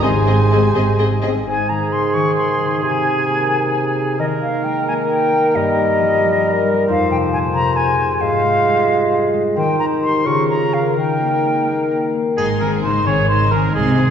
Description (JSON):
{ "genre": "classical, dramatic, fast romantic movement for symphony orchestra", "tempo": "88 BPM (dotted quarters)", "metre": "6/8", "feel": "straight", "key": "Ab major", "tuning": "A4 = 440 Hz", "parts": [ { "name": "warm symphonic violin section", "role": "melody", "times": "0.0-1.2, 12.4-14.1 s", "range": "Ab5 to C6", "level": "-32 LUFS", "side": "left 2 dB", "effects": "none" }, { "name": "bright concert flute", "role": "second line", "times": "0.0-12.1 s", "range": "Eb5 to Db6", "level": "-20 LUFS", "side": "left 1 dB", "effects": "none" }, { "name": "mellow clarinet", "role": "second line", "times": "0.0-12.1 s", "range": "Eb4 to Ab4", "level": "-25 LUFS", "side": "right 2 dB", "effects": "none" }, { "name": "rich symphonic violin section", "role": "second line", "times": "0.0-1.3, 12.4-14.1 s", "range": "Eb4 to Eb5", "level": "-26 LUFS", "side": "left 2 dB", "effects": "none" }, { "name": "warm cor anglais", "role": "second line", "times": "0.0-14.1 s", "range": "Ab4 to Db5", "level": "-23 LUFS", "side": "right 1 dB", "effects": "none" }, { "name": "mellow bassoon", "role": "accompaniment", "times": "0.0-12.1 s", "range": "Ab2 to Ab3", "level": "-22 LUFS", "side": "right 3 dB", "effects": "none" }, { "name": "rich symphonic viola section", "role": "accompaniment", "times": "0.0-1.3, 12.4-14.1 s", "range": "Ab3 to Ab4", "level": "-26 LUFS", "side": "right 2 dB", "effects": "none" }, { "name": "concert harp", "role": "arpeggios", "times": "0.0-14.1 s", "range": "F2 to C5", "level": "-21 LUFS", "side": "left 4 dB", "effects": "none" }, { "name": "dark symphonic cello section", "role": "bass", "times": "0.0-1.4, 12.4-14.1 s", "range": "Ab2 to C3", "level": "-21 LUFS", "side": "right 1 dB", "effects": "none" }, { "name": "dark symphonic double bass section", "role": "bass", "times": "0.0-1.4, 12.4-14.1 s", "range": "Ab1 to C2", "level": "-21 LUFS", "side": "right 1 dB", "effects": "none" }, { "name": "mellow French horn section", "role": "sustained chords", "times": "0.5-1.3 s", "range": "Ab3 to C4", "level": "-25 LUFS", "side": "left 4 dB", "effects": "none" }, { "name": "triangle", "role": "percussion", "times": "12.4-13.2 s", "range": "none", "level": "-43 LUFS", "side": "left 2 dB", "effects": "none" } ], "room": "wet scoring stage reverb, RT60 1.6 s", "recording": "heard from further back in the room, nothing above 7.8 kHz", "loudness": "-14 LUFS", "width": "side -8 dB against mid", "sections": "0.0-1.5 A section; 1.5-12.4 B section; 12.4-14.1 B section", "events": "none", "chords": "0.0 Ab; 2.8 Ab/C; 4.2 Eb; 5.5 Eb/G; 6.9 Fm7; 8.2 Fm/Ab; 9.6 Cm/Eb; 10.3 Bbm/Db; 11.0 Eb; 12.4 Ab", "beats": "| 0.03 0.75 | 1.47 2.14 | 2.82 3.50 | 4.18 4.86 | 5.54 6.21 | 6.88 7.55 | 8.22 8.89 | 9.56 10.25 | 10.96 11.67 | 12.38 13.06 | 13.74" }